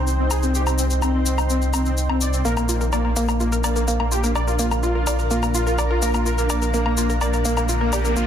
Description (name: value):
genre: melodic techno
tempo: 126 BPM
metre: 4/4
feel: straight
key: unclear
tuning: A4 = 440 Hz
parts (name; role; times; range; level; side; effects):
- soft supersaw; melody; 0.0-8.2 s; Bb3 to D5; -25 LUFS; left 1 dB; cassette tape, low-pass filter, ping-pong delay
- dark detuned saw bass; bass; 0.0-8.3 s; Bb1 to C2; -22 LUFS; equal; none
- granular cloud pad; texture; 0.0-8.3 s; D4 to C6; -28 LUFS; equal; built-in reverb
- shaker and woodblock; drums; 0.1-8.3 s; none; -27 LUFS; left 3 dB; none
- woody wave-folded pluck; arpeggios; 2.5-8.3 s; Bb3 to D5; -25 LUFS; equal; chorus, dub echo
- riser; sound effects; 7.1-8.3 s; none; -36 LUFS; right 2 dB; none
room: moderate scoring stage reverb, RT60 1.5 s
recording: dense, heavily limited modern master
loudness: -18 LUFS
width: side -9 dB against mid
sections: 0.0-8.3 A section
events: filter sweep on supersaw synth 0.0-8.3; riser 7.1-8.3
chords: 0.0 Cm; 2.5 Bb